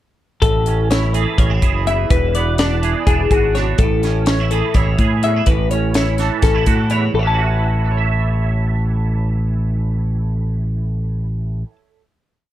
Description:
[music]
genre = math rock and midwest emo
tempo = 250 BPM (eighths)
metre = 7/8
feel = straight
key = A major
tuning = A4 = 440 Hz
[part]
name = twangy electric guitar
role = accompaniment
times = 0.4-12.0 s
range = E2 to E5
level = -23 LUFS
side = right 9 dB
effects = ensemble chorus
[part]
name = twelve-string electric guitar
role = arpeggios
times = 0.4-11.8 s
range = G#4 to A5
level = -21 LUFS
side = left 7 dB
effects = none
[part]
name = growling fingered electric bass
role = bass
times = 0.4-11.6 s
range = E1 to A2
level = -18 LUFS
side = equal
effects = overdrive
[part]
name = crisp fusion drum kit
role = drums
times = 0.4-7.0 s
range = hi-hat, kick drum, snare drum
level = -18 LUFS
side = equal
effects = none
[sound]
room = little or no reverb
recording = dark, warm production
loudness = -15 LUFS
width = side -13 dB against mid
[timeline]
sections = 0.4-7.1 A section; 7.1-10.5 final chord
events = none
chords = 0.4 Amaj7; 2.1 E7; 3.8 Amaj7; 5.5 A6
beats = | 0.42 0.66 0.90 1.14 1.39 1.62 1.87 | 2.11 2.35 2.59 2.83 3.07 3.31 3.55 | 3.79 4.03 4.27 4.51 4.75 4.99 5.23 | 5.47 5.71 5.95 6.19 6.43 6.67 6.91 | 7.14 7.38 7.62 7.86 8.10 8.34 8.58 | 8.81 9.05 9.29 9.53 9.77 10.01 10.24

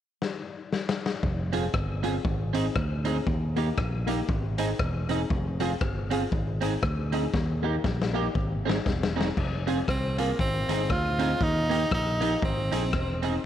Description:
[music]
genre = ska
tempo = 118 BPM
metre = 4/4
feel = swing 59% on 8ths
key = unclear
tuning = A4 = 445 Hz
[part]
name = raw garage drum kit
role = drums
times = 0.2-13.3 s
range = crash cymbal, hi-hat, kick drum, rim click, snare drum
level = -30 LUFS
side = left 2 dB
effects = none
[part]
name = fingered electric bass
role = bass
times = 1.2-13.4 s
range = E1 to Eb2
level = -29 LUFS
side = right 1 dB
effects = none
[part]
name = electric guitar at the edge of break-up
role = accompaniment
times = 1.5-13.3 s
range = Bb3 to Ab4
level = -32 LUFS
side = right 8 dB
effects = analog chorus
[part]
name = dark upright piano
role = stabs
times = 1.5-13.4 s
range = Bb3 to Ab4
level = -34 LUFS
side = left 9 dB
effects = tape echo
[part]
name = bright tenor saxophone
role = melody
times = 9.9-13.2 s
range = Bb3 to F4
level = -28 LUFS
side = right 1 dB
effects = tape echo
[sound]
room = light reverb, studio reverb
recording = 1960s-style stereo with parts hard left and right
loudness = -25 LUFS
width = side -10 dB against mid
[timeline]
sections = 0.0-1.2 A section; 1.2-9.4 B section; 9.4-13.5 C section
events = drum fill 0.2-1.2, 7.3-9.4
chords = 0.0 N.C.; 1.2 Fm; 2.2 Ab; 3.3 Eb; 4.3 Ab; 5.3 Fm; 6.3 Ab; 7.3 Eb; 8.4 Ab; 9.4 Fm; 10.4 Ab; 11.4 Eb; 12.4 Ab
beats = 0.21 0.72 | 1.23 1.74 2.25 2.76 | 3.27 3.77 4.28 4.79 | 5.30 5.81 6.32 6.83 | 7.33 7.84 8.35 8.86 | 9.37 9.88 10.39 10.90 | 11.41 11.92 12.43 12.94

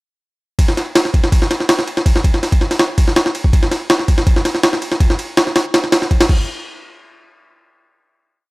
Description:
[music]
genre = drum and bass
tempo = 163 BPM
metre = 4/4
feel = straight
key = none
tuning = none
[part]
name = jungle sampler-style drum kit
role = drums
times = 0.6-6.4 s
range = crash cymbal, kick drum, ride cymbal, snare drum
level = -13 LUFS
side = equal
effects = overdrive, studio reverb
[sound]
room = digital ambience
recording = dry, gritty hardware recording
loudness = -13 LUFS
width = side -24 dB against mid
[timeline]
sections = 0.6-6.5 drop; 6.5-7.9 final hit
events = drop 0.6-6.5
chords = none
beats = | 0.59 0.95 1.32 1.69 | 2.06 2.43 2.79 3.16 | 3.53 3.90 4.27 4.64 | 5.00 5.37 5.74 6.11

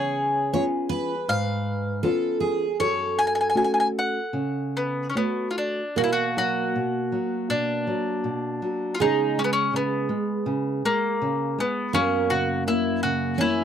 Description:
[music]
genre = fado-style ballad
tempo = 71-84 BPM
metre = 4/4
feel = rubato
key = F# harmonic minor, B harmonic minor from 6.0 s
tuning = A4 = 440 Hz
[part]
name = bowl-back mandolin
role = melody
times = 0.0-13.6 s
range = A#3 to G#5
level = -25 LUFS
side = left 2 dB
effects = none
[part]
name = picked twelve-string acoustic guitar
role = second line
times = 0.0-13.6 s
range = G#3 to C#5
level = -27 LUFS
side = right 5 dB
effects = none
[part]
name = nylon-string guitar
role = accompaniment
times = 0.0-13.6 s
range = F#2 to C#5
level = -27 LUFS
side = left 1 dB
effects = none
[sound]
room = moderate booth ambience, RT60 0.2 s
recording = dry, close 1970s-style studio recording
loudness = -22 LUFS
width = side -8 dB against mid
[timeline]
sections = 0.0-6.0 A section; 6.0-13.6 B section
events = none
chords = 0.0 C#7; 2.8 F#m; 6.0 Bm; 9.0 C#5; 11.9 F#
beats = 0.53 1.27 2.02 | 2.79 3.56 4.33 5.14 | 5.96 6.73 7.49 8.24 | 8.99 9.71 10.45 11.19 | 11.92 12.64 13.37

